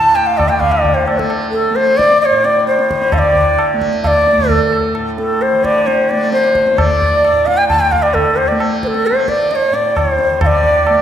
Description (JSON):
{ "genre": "indian classical, Hindustani", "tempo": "132 BPM", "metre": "4/4", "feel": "straight", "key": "unclear", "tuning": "A4 = 444 Hz", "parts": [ { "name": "breathy bright bansuri", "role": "melody", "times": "0.0-11.0 s", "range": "A4 to A5", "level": "-12 LUFS", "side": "equal", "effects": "none" }, { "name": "hand-pumped harmonium", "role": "second line", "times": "0.0-1.4, 10.5-11.0 s", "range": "C5 to A5", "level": "-21 LUFS", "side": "left 1 dB", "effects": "none" }, { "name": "tanpura", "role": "drone", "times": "0.0-11.0 s", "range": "A2 to A3", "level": "-21 LUFS", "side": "equal", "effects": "none" }, { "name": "tabla", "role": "percussion", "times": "0.2-11.0 s", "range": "none", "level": "-20 LUFS", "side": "equal", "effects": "none" } ], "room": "wet recital hall reverb, RT60 1.4 s", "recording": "recorded in a church or concert hall", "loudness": "-11 LUFS", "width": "side -9 dB against mid", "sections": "0.0-3.1 A section; 3.1-11.0 B section", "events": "none", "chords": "none", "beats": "0.39 0.85 | 1.31 1.76 2.22 2.68 | 3.14 3.59 4.05 4.51 | 4.96 5.42 5.87 6.33 | 6.79 7.24 7.70 8.15 | 8.60 9.06 9.51 9.97 | 10.42 10.87" }